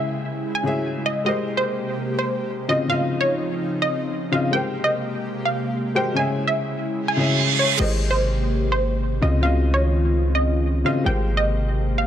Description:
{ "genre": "future bass", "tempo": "147 BPM", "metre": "4/4", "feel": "half-time", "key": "Ab major", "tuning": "A4 = 438 Hz", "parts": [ { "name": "wide unison pluck", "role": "melody", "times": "0.0-12.1 s", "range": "C5 to Ab5", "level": "-24 LUFS", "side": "right 1 dB", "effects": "dub echo" }, { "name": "felt-muted upright piano", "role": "accompaniment", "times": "0.0-12.1 s", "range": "Db3 to Fb5", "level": "-26 LUFS", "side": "left 3 dB", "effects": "none" }, { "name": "airy breathy pad", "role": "sustained chords", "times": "0.0-12.1 s", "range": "C3 to G4", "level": "-28 LUFS", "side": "equal", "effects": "chorus" }, { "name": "reverse cymbal", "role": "sound effects", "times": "7.1-7.8 s", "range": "none", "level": "-23 LUFS", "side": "right 7 dB", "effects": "none" }, { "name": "warm 808-style bass", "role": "bass", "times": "7.8-12.1 s", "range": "Ab1 to Db2", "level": "-21 LUFS", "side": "equal", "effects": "none" }, { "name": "electronic crash cymbal", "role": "drums", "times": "7.8-7.9 s", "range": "none", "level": "-36 LUFS", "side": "left 6 dB", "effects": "overdrive, studio reverb" } ], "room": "light reverb", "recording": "none", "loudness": "-19 LUFS", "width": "side -10 dB against mid", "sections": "0.0-7.8 A section; 7.8-12.1 A section", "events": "reverse cymbal 7.1-7.8; filter sweep on analog synth pad 7.8-12.1", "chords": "0.0 Dbm; 1.3 Abmaj9; 2.7 Dbmaj9; 4.5 Abmaj9; 6.2 Dbm; 7.8 Abmaj9; 9.2 Dbmaj9; 11.1 Abmaj9", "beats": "0.04 0.45 0.86 | 1.26 1.67 2.08 2.49 | 2.90 3.31 3.71 4.12 | 4.53 4.94 5.35 5.75 | 6.16 6.57 6.98 7.39 | 7.80 8.20 8.61 9.02 | 9.43 9.84 10.24 10.65 | 11.06 11.47 11.88" }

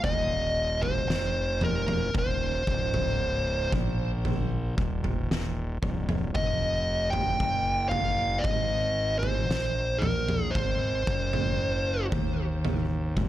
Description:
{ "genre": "stoner and doom metal", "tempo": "57 BPM", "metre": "4/4", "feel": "straight", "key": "unclear", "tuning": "A4 = 442 Hz", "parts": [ { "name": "fuzz lead guitar", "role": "melody", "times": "0.0-12.1 s", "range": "Bb4 to G5", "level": "-28 LUFS", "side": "equal", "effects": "distortion, tape echo" }, { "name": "fuzz fingered electric bass", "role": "bass", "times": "0.0-13.3 s", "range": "C1 to Eb2", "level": "-30 LUFS", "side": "equal", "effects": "overdrive" }, { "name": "oversized low-tuned drum kit", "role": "drums", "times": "0.0-13.3 s", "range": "kick drum, snare drum, toms", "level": "-30 LUFS", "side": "equal", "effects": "none" } ], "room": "little or no reverb", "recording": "none", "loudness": "-25 LUFS", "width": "side -13 dB against mid", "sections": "0.0-13.3 A section", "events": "none", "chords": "0.0 Cm/Eb; 1.1 F5; 2.1 Cm; 2.7 N.C.; 6.3 Ebadd9/F; 7.4 Fsus2; 8.4 Ab5; 9.5 Bbsus2; 10.5 Ab; 11.1 N.C.", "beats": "0.04 1.09 | 2.14 3.19 4.25 5.30 | 6.35 7.40 8.45 9.50 | 10.55 11.60 12.64" }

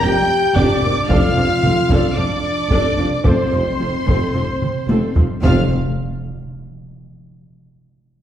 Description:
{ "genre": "cinematic, epic orchestral film score", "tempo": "112 BPM", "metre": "4/4", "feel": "straight", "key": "F major", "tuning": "A4 = 441 Hz", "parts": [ { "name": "warm studio violin section", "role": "melody", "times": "0.0-5.7 s", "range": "C6 to G6", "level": "-26 LUFS", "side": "left 1 dB", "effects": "none" }, { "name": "warm symphonic violin section", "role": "second line", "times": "0.0-5.7 s", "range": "C5 to G5", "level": "-27 LUFS", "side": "left 1 dB", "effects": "none" }, { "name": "dark symphonic viola section", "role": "accompaniment", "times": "0.0-5.7 s", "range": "F3 to A4", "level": "-24 LUFS", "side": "equal", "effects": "none" }, { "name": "dark French horn section", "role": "sustained chords", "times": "0.0-5.7 s", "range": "C4 to G4", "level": "-24 LUFS", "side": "left 2 dB", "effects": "none" }, { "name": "clear trumpet", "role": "stabs", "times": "0.0-5.6 s", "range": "F4 to G5", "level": "-24 LUFS", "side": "right 2 dB", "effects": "none" }, { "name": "mellow tuba", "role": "bass", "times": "0.0-5.7 s", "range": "F1", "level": "-24 LUFS", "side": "right 1 dB", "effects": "none" }, { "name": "rich symphonic cello section", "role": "bass", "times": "0.0-5.7 s", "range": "F2", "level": "-25 LUFS", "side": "right 1 dB", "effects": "none" }, { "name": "warm symphonic double bass section", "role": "bass", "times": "0.0-5.7 s", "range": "F1", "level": "-24 LUFS", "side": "equal", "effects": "none" }, { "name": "taiko ensemble", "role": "drums", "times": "0.6-5.6 s", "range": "none", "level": "-20 LUFS", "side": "equal", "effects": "none" }, { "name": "timpani", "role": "percussion", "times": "1.1-1.9, 5.4-5.7 s", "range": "F2", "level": "-26 LUFS", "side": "equal", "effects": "none" }, { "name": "impact", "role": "sound effects", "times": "5.4-7.6 s", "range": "none", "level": "-28 LUFS", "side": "equal", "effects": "none" } ], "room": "wet recital hall reverb, RT60 1.5 s", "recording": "heard from further back in the room", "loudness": "-14 LUFS", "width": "side -10 dB against mid", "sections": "0.0-5.4 A section; 5.4-7.6 B section", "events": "drum fill 4.6-5.4; impact 5.4-7.6", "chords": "0.0 Gm/F; 1.1 Dm/F; 3.2 F", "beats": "0.03 0.56 | 1.09 1.62 2.15 2.69 | 3.24 3.79 4.34 4.88 | 5.42 5.96 6.49 7.03" }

